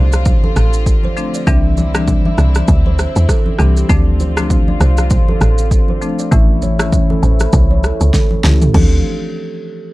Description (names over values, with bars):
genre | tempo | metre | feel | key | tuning
afrobeats | 99 BPM | 4/4 | swing 58% on 16ths | D minor | A4 = 440 Hz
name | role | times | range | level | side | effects
rich studio string section | sustained chords | 0.0-9.0 s | D3 to F4 | -26 LUFS | left 2 dB | low-pass filter
kalimba | riff | 0.0-9.0 s | G4 to E5 | -24 LUFS | right 7 dB | low-pass filter, digital delay
woody log drum bass | bass | 0.0-9.0 s | A1 to E2 | -13 LUFS | equal | none
deep house drum kit | drums | 0.1-8.9 s | crash cymbal, kick drum, rim click, shaker, snare drum, toms | -15 LUFS | equal | overdrive
congas | percussion | 0.1-9.0 s | none | -23 LUFS | equal | none
marimba with hard mallets | accompaniment | 1.2-9.0 s | E3 to E4 | -22 LUFS | left 4 dB | low-pass filter
room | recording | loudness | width
light reverb | dark, warm production | -11 LUFS | side -19 dB against mid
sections
0.0-8.7 A section; 8.7-9.9 B section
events
filter sweep 0.0-8.7; drum fill 8.1-8.7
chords
0.0 Dm7; 1.5 Cadd9; 3.9 Dm7; 6.3 A; 8.7 Dm7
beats
0.26 0.86 | 1.47 2.08 2.68 3.29 | 3.90 4.50 5.11 5.71 | 6.32 6.93 7.53 8.14 | 8.74